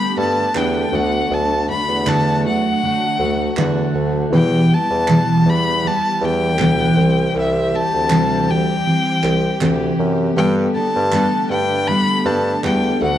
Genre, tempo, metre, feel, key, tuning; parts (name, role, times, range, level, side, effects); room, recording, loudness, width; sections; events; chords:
acoustic pop; 79 BPM; 4/4; swing 55% on 16ths; G major; A4 = 440 Hz
warm violin; melody; 0.0-13.2 s; E5 to B5; -20 LUFS; left 2 dB
overdriven reed electric piano; accompaniment; 0.0-13.2 s; B3 to G5; -32 LUFS; left 5 dB
picked steel-string acoustic guitar; accompaniment; 0.0-13.2 s; E2 to A4; -18 LUFS; equal; double-tracked left and right
warm studio string section; sustained chords; 0.0-13.2 s; D3 to G4; -27 LUFS; right 2 dB
warm bassoon; bass; 0.2-13.2 s; C2 to G2; -21 LUFS; equal
group handclap; percussion; 0.6-12.8 s; -30 LUFS; right 6 dB
moderate echo chamber reverb, RT60 1.6 s, small room ambience; dark, warm production; -15 LUFS; side -11 dB against mid
0.0-13.2 A section
0.0 Gadd9; 0.9 D; 4.3 Em; 7.0 C; 10.4 Gadd9